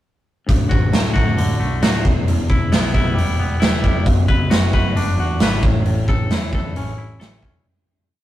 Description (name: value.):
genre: quiet-loud alternative rock.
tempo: 134 BPM.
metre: 4/4.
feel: straight.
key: D major.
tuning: A4 = 440 Hz.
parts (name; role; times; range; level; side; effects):
twangy electric guitar; arpeggios; 0.5-7.6 s; D2 to B4; -24 LUFS; left 2 dB; none.
overdriven picked electric bass; bass; 0.5-7.6 s; D1 to E2; -21 LUFS; equal; none.
raw garage drum kit; drums; 0.5-7.5 s; hi-hat, kick drum, snare drum; -17 LUFS; equal; none.
room: light reverb.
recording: rough rehearsal-room recording, warm saturation.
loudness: -15 LUFS.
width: side -14 dB against mid.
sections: 0.5-7.6 verse.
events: fade-out 5.9-7.6.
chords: 0.5 D; 2.1 Em; 4.1 Bm/F#; 5.6 A.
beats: | 0.49 0.94 1.38 1.83 | 2.27 2.72 3.17 3.62 | 4.06 4.51 4.96 5.41 | 5.86 6.30 6.75 7.20.